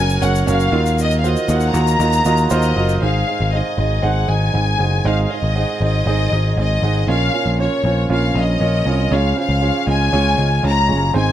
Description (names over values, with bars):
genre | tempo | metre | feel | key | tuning
piano-driven pop | 118 BPM | 4/4 | straight | unclear | A4 = 441 Hz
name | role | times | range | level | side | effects
clear studio violin section | melody | 0.0-11.3 s | Db5 to Bb5 | -20 LUFS | left 3 dB | none
warm grand piano | accompaniment | 0.0-11.3 s | Ab2 to Gb5 | -21 LUFS | right 6 dB | none
bright tonewheel organ | sustained chords | 0.0-11.3 s | Ab2 to F5 | -32 LUFS | right 1 dB | overdrive, stopped rotary speaker
overdriven picked electric bass | bass | 0.0-11.3 s | Gb1 to Eb2 | -17 LUFS | left 1 dB | none
tube shaker | percussion | 0.1-3.0 s | none | -33 LUFS | left 13 dB | none
room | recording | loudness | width
studio reverb | dry, close 1970s-style studio recording | -15 LUFS | side -11 dB against mid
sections
0.0-3.0 A section; 3.0-11.3 B section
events
none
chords
0.0 Gb; 0.7 Ebmadd9; 3.0 Ab; 7.1 Bbm; 9.1 Db